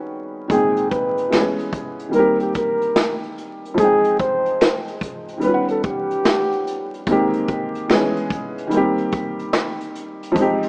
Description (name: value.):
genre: lo-fi hip hop.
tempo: 73 BPM.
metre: 4/4.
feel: swing 65% on 16ths.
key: unclear.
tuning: A4 = 441 Hz.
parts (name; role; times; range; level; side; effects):
felt-muted upright piano; accompaniment; 0.0-10.7 s; Bb2 to G5; -24 LUFS; equal; low-pass filter.
dark flugelhorn; melody; 0.5-7.0 s; G4 to C5; -22 LUFS; equal; low-pass filter.
vintage brush drum kit; drums; 0.5-10.7 s; hi-hat, kick drum, snare drum; -24 LUFS; equal; none.
finger snaps; percussion; 1.3-9.8 s; none; -36 LUFS; equal; none.
room: small room ambience.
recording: rough home demo mix, vinyl crackle, small speaker sound.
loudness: -20 LUFS.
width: mono.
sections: 0.0-10.7 A section.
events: none.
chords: 0.5 Abmaj9; 1.3 Dbm7; 2.1 Cm7; 3.8 Fm9; 5.4 Eb7alt; 7.1 Abmaj9; 7.9 Dbm7; 8.7 Cm7.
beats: | 0.49 1.32 2.14 2.96 | 3.78 4.60 5.43 6.25 | 7.07 7.89 8.71 9.54 | 10.36.